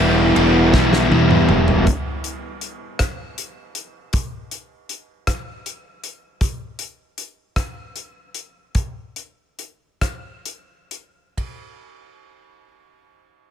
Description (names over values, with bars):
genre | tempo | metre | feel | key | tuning
post-rock | 42-53 BPM (dotted quarters) | 6/8 | straight | unclear | A4 = 440 Hz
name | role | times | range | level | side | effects
crunchy overdriven guitar | riff | 0.0-1.9 s | E3 to E4 | -16 LUFS | equal | none
fuzz fingered electric bass | bass | 0.0-1.8 s | E1 to E2 | -19 LUFS | equal | overdrive
loose indie drum kit | drums | 0.4-11.6 s | hi-hat, kick drum, ride cymbal, rim click, snare drum, toms | -22 LUFS | equal | none
room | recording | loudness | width
light reverb | none | -16 LUFS | side -8 dB against mid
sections
0.0-1.9 A section; 1.9-11.4 B section; 11.4-13.5 C section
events
drum fill 0.7-1.9; slowing down 6.4-11.4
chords
0.0 Em; 1.9 N.C.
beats
0.74 | 1.87 3.00 | 4.14 5.27 | 6.41 7.56 | 8.75 10.01 | 11.38